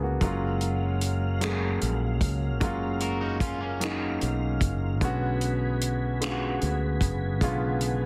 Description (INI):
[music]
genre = slow six-eight R&B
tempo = 50 BPM (dotted quarters)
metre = 6/8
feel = straight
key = F# major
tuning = A4 = 440 Hz
[part]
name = clear grand piano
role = accompaniment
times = 0.0-8.1 s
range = C#3 to B4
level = -32 LUFS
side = equal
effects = none
[part]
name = fretless electric bass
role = bass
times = 0.0-8.1 s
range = F#1 to D2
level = -31 LUFS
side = equal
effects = none
[part]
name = tonewheel organ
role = sustained chords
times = 0.2-8.1 s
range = F#3 to E#5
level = -40 LUFS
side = equal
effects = overdrive, chorus vibrato, slow rotary speaker
[part]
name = warm soul drum kit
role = drums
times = 0.2-8.0 s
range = finger snaps, hi-hat, kick drum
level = -32 LUFS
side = equal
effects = soft clipping on snare
[part]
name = electric guitar at the edge of break-up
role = second line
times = 3.0-4.8 s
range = A#3 to A#4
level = -38 LUFS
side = equal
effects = phaser
[sound]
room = light reverb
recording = dense, heavily limited modern master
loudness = -27 LUFS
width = mono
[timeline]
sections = 0.0-8.1 A section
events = none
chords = 0.2 F#maj7; 5.0 Bm6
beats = | 0.21 1.41 | 2.61 3.81 | 5.01 6.21 | 7.41